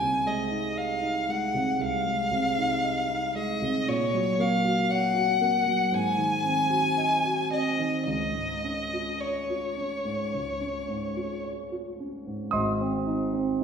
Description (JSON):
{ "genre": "classical, romantic duo for violin and grand piano", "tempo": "53-60 BPM", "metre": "4/4", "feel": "rubato", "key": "Db major", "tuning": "A4 = 445 Hz", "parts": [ { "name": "rich violin", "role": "melody", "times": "0.0-11.4 s", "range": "Db5 to Ab5", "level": "-27 LUFS", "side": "left 2 dB", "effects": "none" }, { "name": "warm concert grand piano", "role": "accompaniment", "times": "0.0-13.6 s", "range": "Ab1 to Eb6", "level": "-28 LUFS", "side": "right 2 dB", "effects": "none" } ], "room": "wet scoring stage reverb, RT60 1.6 s", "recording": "heard from further back in the room", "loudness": "-24 LUFS", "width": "side -6 dB against mid", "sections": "0.0-12.5 A section; 12.5-13.6 B section", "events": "none", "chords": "0.0 Ab/C; 3.9 Gb/Bb; 5.9 Ab7; 8.1 Db; 12.5 Ab", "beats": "0.78 1.81 2.85 | 3.88 4.90 5.92 6.97 | 8.07 9.20 10.33 11.44 | 12.53 13.60" }